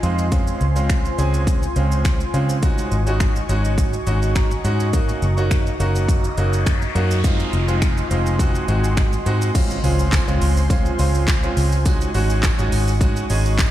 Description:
dance-pop; 104 BPM; 4/4; straight; Db major; A4 = 441 Hz
bright grand piano; accompaniment; 0.0-13.6 s; Ab3 to Bb5; -25 LUFS; right 2 dB; sidechain pumping
airy breathy pad; sustained chords; 0.0-13.7 s; F4 to Db6; -28 LUFS; right 1 dB; chorus, sidechain pumping
vintage muted fingered electric bass; bass; 0.0-13.7 s; F1 to Db3; -20 LUFS; equal; sidechain pumping
house drum kit; drums; 0.0-13.7 s; crash cymbal, finger snaps, handclaps, hi-hat, kick drum, shaker; -20 LUFS; equal
noise sweep and impact; sound effects; 5.6-11.9 s; -31 LUFS; equal
tambourine; percussion; 9.6-13.7 s; -39 LUFS; right 10 dB
little or no reverb; played on a big sound system in a bare room, stone room reverb; -16 LUFS; side -13 dB against mid
0.0-9.6 A section; 9.6-13.7 B section
grand piano fill 0.0-0.3, 3.8-4.9; noise sweep 5.6-9.6; impact 9.6-11.9
0.3 Dbmaj7; 2.6 Ab7sus4; 4.9 Gb6; 7.2 Fm7; 9.6 Dbmaj7; 11.9 Ab7sus4
| 0.32 0.90 1.47 2.05 | 2.63 3.20 3.78 4.36 | 4.93 5.51 6.09 6.67 | 7.24 7.82 8.40 8.97 | 9.55 10.13 10.70 11.28 | 11.86 12.43 13.01 13.59

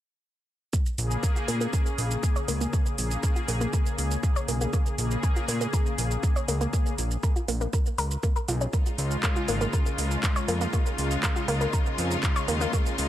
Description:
melodic techno; 120 BPM; 4/4; straight; Bb minor; A4 = 440 Hz
analog pluck; arpeggios; 0.7-12.8 s; Bb3 to Db5; -33 LUFS; equal; chorus, sidechain pumping, digital delay
electronic kick drum; drums; 0.7-12.8 s; -25 LUFS; equal
house drum kit; drums; 0.7-13.1 s; handclaps, hi-hat, shaker; -33 LUFS; right 3 dB; sidechain pumping on perc, sidechain pumping on hats
brassy analog pad; stabs; 1.0-13.1 s; Db3 to Ab4; -32 LUFS; left 2 dB; wide subtle chorus, sidechain pumping, digital delay
fat analog bass; bass; 1.0-13.1 s; Ab1 to Bb2; -28 LUFS; equal; sidechain pumping
bright studio string section; sustained chords; 8.7-13.1 s; Db3 to F4; -33 LUFS; left 2 dB; sidechain pumping
little or no reverb; -24 LUFS; side -13 dB against mid
0.7-13.1 A section
filter sweep on synth arpeggio sound 0.7-13.1
0.7 Bbm7; 8.7 Db
| 0.73 1.23 1.73 2.23 | 2.73 3.23 3.73 4.23 | 4.73 5.23 5.73 6.23 | 6.73 7.23 7.73 8.23 | 8.73 9.23 9.73 10.23 | 10.73 11.23 11.73 12.23 | 12.73

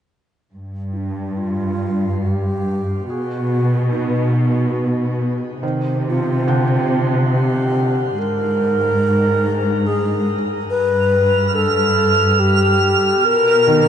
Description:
ambient; 71 BPM; 3/4; straight; A4 = 437 Hz
warm studio cello section; bass; 0.5-13.9 s; G2 to C3; -19 LUFS; equal
reedy wooden-headed alto flute; melody; 0.9-13.9 s; D4 to B4; -19 LUFS; left 2 dB; ping-pong delay
felt-muted upright piano; arpeggios; 3.1-13.9 s; D3 to G5; -26 LUFS; right 2 dB; ping-pong delay
twinkling granular texture; texture; 11.0-13.9 s; F6; -18 LUFS; right 5 dB; built-in reverb
moderate shimmer reverb, RT60 7.4 s; nothing above 10.3 kHz; -15 LUFS; side -9 dB against mid
0.6-13.9 A section
fade-in on felt piano 0.6-13.9; fade-in on alto flute 0.6-13.9
0.6 Dmadd11/G (rootless); 3.1 B; 5.6 Cmadd9; 8.2 Abmaj7; 10.7 G7; 13.2 Bmaj7
| 0.56 1.41 2.25 | 3.10 3.94 4.79 | 5.63 6.47 7.32 | 8.16 9.01 9.86 | 10.70 11.55 12.39 | 13.24

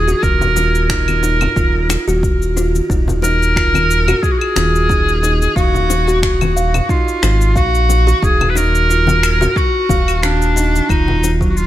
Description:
organic downtempo; 90 BPM; 4/4; swing 54% on 16ths; Eb harmonic minor; A4 = 442 Hz
bright clarinet; melody; 0.0-11.7 s; D4 to Cb5; -17 LUFS; equal; digital delay
buzzing kalimba; arpeggios; 0.0-11.7 s; Eb3 to F5; -20 LUFS; right 1 dB; tape echo
round analog bass; bass; 0.0-11.7 s; Eb1 to Bb1; -16 LUFS; equal; sidechain pumping
electronic cabasa, finger snaps and claves; drums; 0.1-11.7 s; -23 LUFS; left 3 dB; studio reverb
congas and bongos; percussion; 0.1-11.4 s; -24 LUFS; left 4 dB
electronic kick drum; drums; 0.2-11.5 s; -18 LUFS; equal; studio reverb
small room ambience; -12 LUFS; side -13 dB against mid
0.0-8.2 A section; 8.2-11.7 A section
0.0 Ebmadd9
| 0.23 0.90 1.56 2.23 | 2.90 3.56 4.23 4.90 | 5.56 6.23 6.90 7.56 | 8.23 8.90 9.56 10.23 | 10.90 11.56

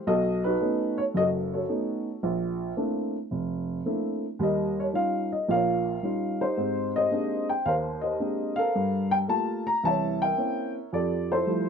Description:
solo jazz; 111 BPM; 4/4; swing 68% on 8ths; A4 = 440 Hz
dark upright piano; solo; 0.0-11.7 s; F1 to Bb5; -25 LUFS; equal
light reverb; dark, warm production; -25 LUFS; side -6 dB against mid
0.0-11.7 A section
0.1 B9; 2.2 Bbmaj9#11; 4.4 Eb9; 6.6 Abmaj9#11; 8.7 Gm9; 9.8 C7b9; 10.9 Fmaj9
| 0.06 0.60 1.15 1.69 | 2.23 2.77 3.32 3.86 | 4.40 4.94 5.49 6.03 | 6.57 7.11 7.66 8.20 | 8.74 9.28 9.83 10.37 | 10.91 11.46

